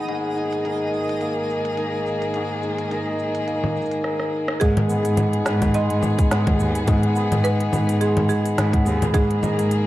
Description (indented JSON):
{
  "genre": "folktronica",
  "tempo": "106 BPM",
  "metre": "4/4",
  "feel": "swing 56% on 16ths",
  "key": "G# minor",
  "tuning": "A4 = 440 Hz",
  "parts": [
    { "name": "warm string quartet", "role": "sustained chords", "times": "0.0-9.9 s", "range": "G#2 to G#4", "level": "-29 LUFS", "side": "left 1 dB", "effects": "none" },
    { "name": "hammered dulcimer", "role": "arpeggios", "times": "0.0-9.9 s", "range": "G#2 to B4", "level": "-24 LUFS", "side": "left 1 dB", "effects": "ping-pong delay" },
    { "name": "twinkling granular texture", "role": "texture", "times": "0.0-4.0 s", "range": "D#4 to D#5", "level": "-36 LUFS", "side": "right 2 dB", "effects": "built-in reverb" },
    { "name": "organic electronic drum kit", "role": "drums", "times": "0.1-9.8 s", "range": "congas, hi-hat, rim click, shaker, snare drum", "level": "-26 LUFS", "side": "equal", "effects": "low-pass filter on snare, low-pass filter on hats, low-pass filter on perc, low-pass filter on room" },
    { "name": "buzzing marimba with medium hard mallets", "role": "second line", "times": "4.6-9.4 s", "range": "G#4 to D#5", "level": "-28 LUFS", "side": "right 2 dB", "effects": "ping-pong delay" },
    { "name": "warm cello", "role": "bass", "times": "4.6-9.9 s", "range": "D#2 to G#2", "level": "-21 LUFS", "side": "equal", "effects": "tube saturation" },
    { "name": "electronic kick drum", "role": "drums", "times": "4.6-9.3 s", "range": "none", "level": "-20 LUFS", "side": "equal", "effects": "none" }
  ],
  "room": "light reverb",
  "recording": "dark, warm production, vinyl crackle",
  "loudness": "-19 LUFS",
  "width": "side -15 dB against mid",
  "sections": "0.0-4.6 A section; 4.6-9.9 B section",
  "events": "filter sweep on hammered dulcimer 0.0-4.6; drum fill 4.0-4.6",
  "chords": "0.1 D#sus4/G#; 4.6 G#m; 9.1 D#sus4"
}